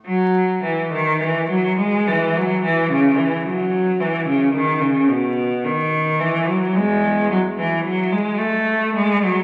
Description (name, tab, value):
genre	classical, baroque-style suite movement for unaccompanied cello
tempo	54 BPM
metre	3/4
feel	rubato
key	E major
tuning	A4 = 440 Hz
part	clear cello	solo	0.1-9.4 s	E2 to A3	-19 LUFS	equal	none
room	wet scoring stage reverb, RT60 1.9 s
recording	very old 78 rpm record, vinyl crackle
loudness	-19 LUFS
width	mono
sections	0.1-9.4 A section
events	none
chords	none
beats	| 0.07 1.22 2.36 | 3.47 4.56 5.66 | 6.75 7.86 8.96